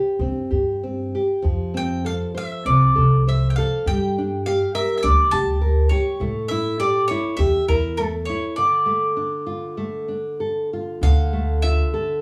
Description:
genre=fado-style ballad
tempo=100 BPM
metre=4/4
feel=rubato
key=D minor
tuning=A4 = 440 Hz
part: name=bowl-back mandolin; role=melody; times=0.0-12.2 s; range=A4 to A5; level=-26 LUFS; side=equal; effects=none
part: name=nylon-string guitar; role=accompaniment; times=0.0-12.2 s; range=D3 to C5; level=-26 LUFS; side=equal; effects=none
part: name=upright bass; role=bass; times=0.2-11.8 s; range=C2 to A2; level=-23 LUFS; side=equal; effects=none
room=wet studio reverb, RT60 0.6 s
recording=heard from further back in the room, small room ambience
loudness=-21 LUFS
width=mono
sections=0.0-11.0 A section; 11.0-12.2 A section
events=break 8.6-11.0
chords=0.0 C5; 1.4 F; 3.9 Gm; 6.2 A5; 8.6 Dm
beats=0.21 0.83 | 1.45 2.06 2.66 3.27 | 3.86 4.45 5.03 5.61 | 6.20 6.79 7.38 7.97 | 8.56 9.16 9.77 10.40 | 11.02 11.62

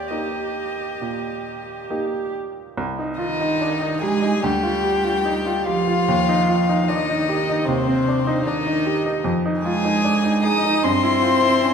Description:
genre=classical, slow romantic movement for piano quartet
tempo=64-77 BPM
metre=4/4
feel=rubato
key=C minor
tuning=A4 = 441 Hz
part: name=warm violin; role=melody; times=0.0-11.7 s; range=C5 to Eb6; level=-24 LUFS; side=left 6 dB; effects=none
part: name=warm cello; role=second line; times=0.0-11.7 s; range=C3 to G4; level=-24 LUFS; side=right 4 dB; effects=none
part: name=bright baby grand piano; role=accompaniment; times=0.0-11.7 s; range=C2 to Ab4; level=-23 LUFS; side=right 1 dB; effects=none
part: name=warm violin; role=second line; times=3.2-11.7 s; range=C4 to Eb5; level=-25 LUFS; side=left 5 dB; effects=none
room=wet recital hall reverb, RT60 1.6 s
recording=minimal, uncompressed stereo recording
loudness=-18 LUFS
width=side -6 dB against mid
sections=0.0-2.8 A section; 2.8-11.7 B section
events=none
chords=0.0 Eb; 2.8 Cm; 4.4 G5/D; 6.1 Cm/Eb; 9.3 Fm7; 10.8 C/G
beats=0.10 1.02 1.90 | 2.77 3.61 4.43 5.26 | 6.08 6.88 7.68 8.46 | 9.25 10.04 10.84 11.63

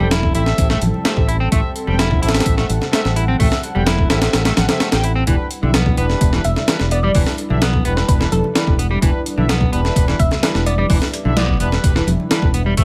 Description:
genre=breakbeat, breaks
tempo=128 BPM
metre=4/4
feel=straight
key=E minor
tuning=A4 = 440 Hz
part: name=dark analog pad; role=sustained chords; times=0.0-12.8 s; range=G3 to F#5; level=-31 LUFS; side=equal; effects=none
part: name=clean electric guitar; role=riff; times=0.0-12.8 s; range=D3 to E4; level=-27 LUFS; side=equal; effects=tube saturation, vintage 12-bit sampler grit, tape echo
part: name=warm brass ensemble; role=stabs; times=0.0-12.8 s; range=G3 to G5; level=-28 LUFS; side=equal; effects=tape echo
part: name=fingered electric bass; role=bass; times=0.0-12.8 s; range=E1 to B1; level=-21 LUFS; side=equal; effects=tube saturation
part: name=congas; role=percussion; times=0.0-12.3 s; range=none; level=-27 LUFS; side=equal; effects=none
part: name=breakbeat sampler-style drum kit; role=drums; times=0.1-12.8 s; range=hi-hat, kick drum, snare drum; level=-20 LUFS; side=equal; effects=studio reverb
part: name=glassy wavetable pluck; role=melody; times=6.4-11.8 s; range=A4 to E5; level=-27 LUFS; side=equal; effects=chorus, AM radio sound, cassette tape, tape echo
room=light reverb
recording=vinyl crackle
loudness=-17 LUFS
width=mono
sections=0.0-12.8 A section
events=none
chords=0.0 Am7; 5.3 Em7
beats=0.12 0.59 1.06 | 1.52 1.99 2.46 2.93 | 3.40 3.87 4.34 4.81 | 5.27 5.74 6.21 6.68 | 7.15 7.62 8.09 8.56 | 9.02 9.49 9.96 10.43 | 10.90 11.37 11.84 12.31 | 12.77

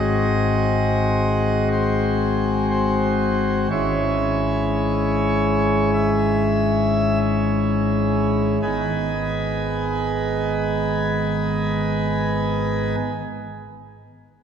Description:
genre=classical, chorale-style piece for pipe organ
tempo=42-64 BPM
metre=4/4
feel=rubato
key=G# minor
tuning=A4 = 443 Hz
part: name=pipe organ, principal chorus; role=solo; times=0.0-13.0 s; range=G#1 to G#5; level=-19 LUFS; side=equal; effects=none
room=wet church reverb, RT60 2.6 s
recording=heard from further back in the room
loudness=-18 LUFS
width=side -8 dB against mid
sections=0.0-8.6 A section; 8.6-14.2 B section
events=slowing down 0.0-8.6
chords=0.0 G#7; 3.7 C#m/G#; 8.6 G#m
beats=0.78 1.72 2.69 | 3.71 4.79 5.94 7.22 | 8.62 10.02 11.42 12.81

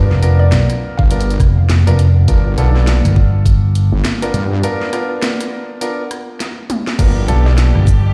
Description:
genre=glitch hop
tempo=102 BPM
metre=4/4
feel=swing 60% on 16ths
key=unclear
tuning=A4 = 441 Hz
part: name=woody wave-folded pluck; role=melody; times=0.0-1.4, 7.5-7.6 s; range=D5 to F5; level=-30 LUFS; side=equal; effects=chorus, cassette tape, dub echo
part: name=bright grand piano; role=stabs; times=0.0-8.1 s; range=B3 to A#4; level=-24 LUFS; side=equal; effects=sidechain pumping, dub echo
part: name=wobble bass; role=bass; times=0.0-7.7 s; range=G1 to G2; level=-15 LUFS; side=equal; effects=chorus, tube saturation
part: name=fingered electric bass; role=bass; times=0.1-3.9, 7.8-8.1 s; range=F1 to B1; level=-13 LUFS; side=equal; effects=none
part: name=drum and bass drum kit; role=drums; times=0.1-8.0 s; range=crash cymbal, hi-hat, rim click, shaker, snare drum, toms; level=-25 LUFS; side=equal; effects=none
part: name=electronic kick drum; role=drums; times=1.0-8.0 s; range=none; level=-15 LUFS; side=equal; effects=none
part: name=bright studio string section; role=sustained chords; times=7.0-8.1 s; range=F3 to G4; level=-29 LUFS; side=equal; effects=sidechain pumping
room=little or no reverb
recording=played on a big sound system in a bare room, stone room reverb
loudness=-14 LUFS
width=mono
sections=0.0-8.1 A section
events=break 4.6-7.0; drum fill 6.4-7.0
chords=0.0 G7#9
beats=0.52 1.11 1.69 | 2.28 2.87 3.46 4.05 | 4.63 5.22 5.81 6.40 | 6.99 7.58

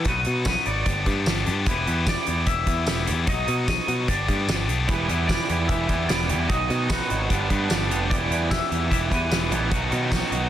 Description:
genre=indie rock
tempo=149 BPM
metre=4/4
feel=straight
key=E minor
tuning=A4 = 441 Hz
part: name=twangy electric guitar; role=melody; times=0.0-10.5 s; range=B4 to E5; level=-29 LUFS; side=equal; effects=lush chorus, tape echo
part: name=heavy high-gain guitar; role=riff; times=0.0-10.5 s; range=E3 to G4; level=-27 LUFS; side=left 4 dB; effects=distortion
part: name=modern bright picked electric bass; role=bass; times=0.0-10.5 s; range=E1 to B2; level=-26 LUFS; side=equal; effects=none
part: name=loose indie drum kit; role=drums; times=0.0-10.4 s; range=hi-hat, kick drum, snare drum, tambourine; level=-26 LUFS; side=equal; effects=none
part: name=crunchy overdriven guitar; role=riff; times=4.9-10.5 s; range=G2 to E4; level=-28 LUFS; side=right 7 dB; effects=lush chorus, tape echo
room=small room ambience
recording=dense, heavily limited modern master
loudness=-21 LUFS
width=side -11 dB against mid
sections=0.0-10.5 A section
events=none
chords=0.1 B; 0.9 G; 1.7 Em7; 3.3 B; 4.1 G; 4.9 Em7; 6.5 B; 7.3 G; 8.1 Em7; 9.7 B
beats=| 0.06 0.46 0.86 1.27 | 1.67 2.07 2.48 2.88 | 3.28 3.68 4.08 4.49 | 4.89 5.29 5.69 6.09 | 6.50 6.90 7.30 7.70 | 8.11 8.51 8.91 9.31 | 9.71 10.12

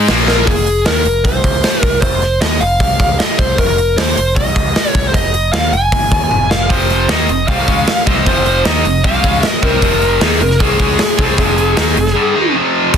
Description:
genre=hard rock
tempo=154 BPM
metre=4/4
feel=straight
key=F minor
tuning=A4 = 441 Hz
part: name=distorted electric guitar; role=riff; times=0.0-0.5, 6.7-13.0 s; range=F2 to Eb4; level=-18 LUFS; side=left 12 dB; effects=distortion
part: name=heavy high-gain guitar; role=riff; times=0.0-0.5 s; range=Bb2 to Bb3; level=-20 LUFS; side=left 2 dB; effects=distortion
part: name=tight distorted guitar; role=riff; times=0.0-0.5, 6.7-13.0 s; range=F2 to Eb4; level=-18 LUFS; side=right 13 dB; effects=distortion
part: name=modern bright picked electric bass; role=bass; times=0.0-13.0 s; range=F1 to Eb2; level=-18 LUFS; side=equal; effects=none
part: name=gated 80s drum kit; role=drums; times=0.1-13.0 s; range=crash cymbal, hi-hat, kick drum, snare drum, toms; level=-15 LUFS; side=equal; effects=none
part: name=bluesy overdriven lead guitar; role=melody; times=0.3-12.5 s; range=Ab4 to Ab5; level=-16 LUFS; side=equal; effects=distortion
room=light reverb, small room reverb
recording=dense, heavily limited modern master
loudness=-11 LUFS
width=side -8 dB against mid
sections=0.5-12.9 A section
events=drum fill 0.3, 6.3-6.7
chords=0.1 Bb5; 0.5 Fm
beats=0.09 | 0.47 0.86 1.25 1.64 | 2.03 2.42 2.81 3.19 | 3.58 3.97 4.36 4.75 | 5.14 5.53 5.92 6.31 | 6.70 7.09 7.48 7.87 | 8.26 8.65 9.04 9.43 | 9.82 10.21 10.60 10.99 | 11.38 11.77 12.16 12.55 | 12.94

